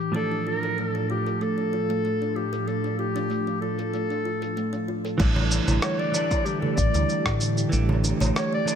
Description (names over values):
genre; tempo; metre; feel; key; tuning
organic downtempo; 95 BPM; 4/4; straight; unclear; A4 = 440 Hz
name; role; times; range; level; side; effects
warm clarinet; melody; 0.0-8.8 s; G4 to D5; -28 LUFS; left 2 dB; ping-pong delay
clean electric guitar; accompaniment; 0.0-8.8 s; A2 to D4; -30 LUFS; right 3 dB; vintage 12-bit sampler grit, sidechain pumping, ping-pong delay
ethereal airy pad; sustained chords; 0.0-8.8 s; A2 to G4; -32 LUFS; equal; ensemble chorus, built-in reverb, sidechain pumping
dusty soul sampler-style drum kit; drums; 0.0-8.8 s; crash cymbal, rim click, shaker; -30 LUFS; right 1 dB; low-pass filter on perc, low-pass filter on cymbals, low-pass filter on snare, low-pass filter on room
kalimba; arpeggios; 0.1-8.8 s; G3 to A4; -32 LUFS; equal; ping-pong delay
woody fretless electric bass; bass; 5.2-8.3 s; A1 to A2; -24 LUFS; equal; none
electronic kick drum; drums; 5.2-7.4 s; none; -25 LUFS; equal; none
darbuka; percussion; 5.4-8.8 s; none; -33 LUFS; right 2 dB; none
room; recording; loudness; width
light reverb, digital ambience; none; -22 LUFS; side -8 dB against mid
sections
0.0-5.2 A section; 5.2-8.8 B section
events
filter sweep on ambient pad 0.0-5.2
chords
0.1 Dm/A; 5.2 A7sus4